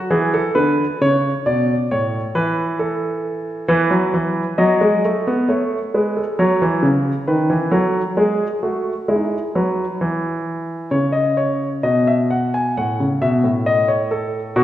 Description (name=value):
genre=classical, baroque-style two-part invention for grand piano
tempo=66 BPM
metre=4/4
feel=straight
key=A major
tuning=A4 = 442 Hz
part: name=warm grand piano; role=solo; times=0.0-14.6 s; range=A2 to G#5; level=-16 LUFS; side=equal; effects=none
room=wet recital hall reverb, RT60 1.7 s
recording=heard from further back in the room, nothing above 10.3 kHz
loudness=-16 LUFS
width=side -12 dB against mid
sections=0.0-10.9 A section; 10.9-14.6 B section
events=none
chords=0.1 E7; 1.9 A; 3.7 E; 5.5 A; 7.3 B7/D#; 9.1 E; 10.9 C#m; 12.8 F#m/A